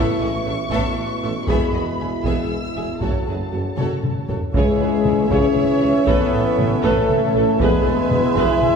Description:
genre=cinematic, epic orchestral film score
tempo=78 BPM (dotted quarters)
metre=6/8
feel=straight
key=C# minor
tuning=A4 = 445 Hz
part: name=warm symphonic violin section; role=melody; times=0.0-8.8 s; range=G#4 to E6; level=-31 LUFS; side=left 2 dB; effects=none
part: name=rich symphonic violin section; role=second line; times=0.0-8.8 s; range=F#4 to G#5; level=-30 LUFS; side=left 1 dB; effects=none
part: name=rich symphonic viola section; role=accompaniment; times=0.0-8.6 s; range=F#3 to C#5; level=-26 LUFS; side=equal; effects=none
part: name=dark French horn section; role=sustained chords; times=0.0-8.8 s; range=G#3 to E4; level=-23 LUFS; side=left 3 dB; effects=none
part: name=warm trombone section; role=sustained chords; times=0.0-8.8 s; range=B2 to C#4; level=-27 LUFS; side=right 4 dB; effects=none
part: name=rich symphonic double bass section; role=bass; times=0.0-8.4 s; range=E1 to C#2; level=-30 LUFS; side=right 3 dB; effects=none
part: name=warm symphonic cello section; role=bass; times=0.0-8.4 s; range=E2 to C#3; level=-28 LUFS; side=right 3 dB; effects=none
part: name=warm tuba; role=bass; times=0.0-8.5 s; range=E1 to C#2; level=-29 LUFS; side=right 2 dB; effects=none
part: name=taiko ensemble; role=drums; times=0.7-8.8 s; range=none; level=-24 LUFS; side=left 1 dB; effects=none
part: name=mellow hollow silver concert flute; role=second line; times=4.5-8.8 s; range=G#4 to E5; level=-26 LUFS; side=equal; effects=none
part: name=pipe organ, principal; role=sustained chords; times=4.5-8.8 s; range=E4 to E5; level=-27 LUFS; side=left 1 dB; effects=none
part: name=dark trumpet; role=stabs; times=4.5-8.8 s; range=G#4 to E5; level=-25 LUFS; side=right 3 dB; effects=none
room=wet scoring stage reverb, RT60 2.0 s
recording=heard from further back in the room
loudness=-17 LUFS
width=side -6 dB against mid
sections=0.0-4.5 A section; 4.5-8.8 A section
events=drum fill 3.8-4.5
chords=0.0 Aadd9; 1.5 E; 3.0 F#m; 4.5 C#m; 6.1 Aadd9; 7.6 E

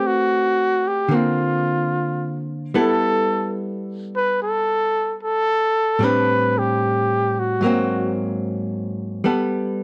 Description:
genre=jazz ballad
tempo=74 BPM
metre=4/4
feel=swing 68% on 8ths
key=G major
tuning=A4 = 443 Hz
part: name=breathy trumpet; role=melody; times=0.0-8.2 s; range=F4 to B4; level=-22 LUFS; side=equal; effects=none
part: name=archtop guitar, miked and amplified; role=accompaniment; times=0.0-9.8 s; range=Ab2 to B4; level=-24 LUFS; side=equal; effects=none
room=studio reverb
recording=dry, close 1970s-style studio recording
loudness=-21 LUFS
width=mono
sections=0.0-9.8 A section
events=none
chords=0.0 Amadd9; 1.1 Bbadd9/D; 2.7 G69; 6.0 Am7; 7.6 Ab9; 9.2 Gadd9

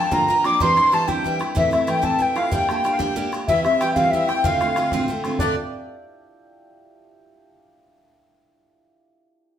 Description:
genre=celtic folk, Celtic jig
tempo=125 BPM (dotted quarters)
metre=6/8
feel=straight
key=D minor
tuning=A4 = 440 Hz
part: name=mellow wooden flute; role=melody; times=0.0-5.5 s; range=D5 to D6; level=-20 LUFS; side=equal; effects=none
part: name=accordion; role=second line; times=0.0-5.5 s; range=D5 to D6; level=-28 LUFS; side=left 4 dB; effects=light tremolo tuning
part: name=hammered dulcimer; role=second line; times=0.0-7.4 s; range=C4 to D5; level=-26 LUFS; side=left 3 dB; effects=none
part: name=picked steel-string acoustic guitar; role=accompaniment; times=0.0-5.5 s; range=D2 to G4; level=-25 LUFS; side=right 3 dB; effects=none
part: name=bodhran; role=percussion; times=0.1-5.5 s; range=none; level=-29 LUFS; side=equal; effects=none
room=wet stone room reverb, RT60 0.9 s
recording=band playing live in one room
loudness=-18 LUFS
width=side -10 dB against mid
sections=0.0-5.4 A section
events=none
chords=0.0 Gm7; 0.6 Cadd9; 1.6 Am; 2.5 Gm; 3.5 C; 4.4 Dm7

